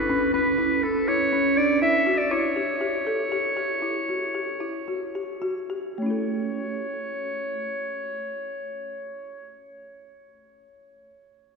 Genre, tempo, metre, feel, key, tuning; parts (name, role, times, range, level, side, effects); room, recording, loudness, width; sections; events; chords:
contemporary instrumental, chamber music in an uneven meter; 106-122 BPM; 7/4; straight; A mixolydian; A4 = 440 Hz
bright clarinet; melody; 0.0-9.6 s; A4 to E5; -26 LUFS; equal
folk marimba with medium mallets; arpeggios; 0.0-9.7 s; A3 to A4; -26 LUFS; equal
wet cathedral reverb, RT60 6.1 s; recorded in a church or concert hall; -23 LUFS; side -4 dB against mid
0.0-6.0 A section; 6.0-9.9 B section
slowing down 1.8-6.0
0.0 F#7(no3) (rootless); 2.3 A7 (rootless); 6.0 A